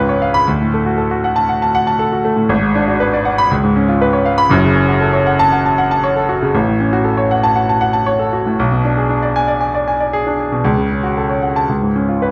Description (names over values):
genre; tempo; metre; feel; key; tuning
classical, virtuoso piano study; 118 BPM; 4/4; rubato; F# minor; A4 = 440 Hz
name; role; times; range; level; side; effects
clear grand piano; solo; 0.0-12.3 s; F#1 to B5; -15 LUFS; equal; none
room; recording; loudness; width
light reverb; dark, warm production; -15 LUFS; mono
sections
0.0-12.3 A section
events
none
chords
0.5 D; 2.5 G#m7b5; 3.5 C#7; 4.5 F#m; 6.5 F#m/A; 8.6 G#dim/B; 10.7 F#m/C#; 11.7 C#7